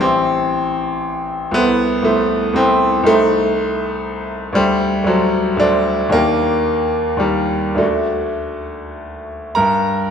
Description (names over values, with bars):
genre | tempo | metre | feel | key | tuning
classical, romantic character piece for solo piano | 99-122 BPM | 3/4 | rubato | unclear | A4 = 441 Hz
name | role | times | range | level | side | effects
bright baby grand piano | solo | 0.0-10.1 s | A1 to Bb5 | -15 LUFS | equal | none
room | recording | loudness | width
moderate scoring stage reverb, RT60 1.6 s | none | -14 LUFS | side -7 dB against mid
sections
0.0-9.6 A section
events
none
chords
0.0 Am7; 1.6 Am/C; 3.1 Adim/C; 4.6 D7; 6.1 Ebmaj7; 7.8 D; 9.6 Gm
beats
| 0.03 0.54 1.06 | 1.56 2.07 2.58 | 3.08 3.58 4.07 | 4.58 5.09 5.62 | 6.15 6.67 7.22 | 7.80 8.40 8.99 | 9.56 10.10